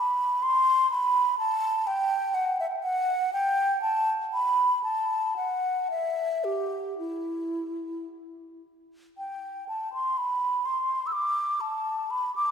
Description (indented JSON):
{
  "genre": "classical, baroque-style fantasia for unaccompanied flute",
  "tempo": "54-63 BPM",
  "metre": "3/4",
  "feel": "rubato",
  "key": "E minor, G major from 9.2 s",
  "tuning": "A4 = 440 Hz",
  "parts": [
    { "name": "mellow hollow concert flute", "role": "solo", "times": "0.0-12.5 s", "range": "E4 to E6", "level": "-25 LUFS", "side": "equal", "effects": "none" }
  ],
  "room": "wet church reverb, RT60 2.5 s",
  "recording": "recorded in a church or concert hall",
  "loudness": "-24 LUFS",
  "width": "side -7 dB against mid",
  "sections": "0.0-9.2 A section; 9.2-12.5 A section",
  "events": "none",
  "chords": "none"
}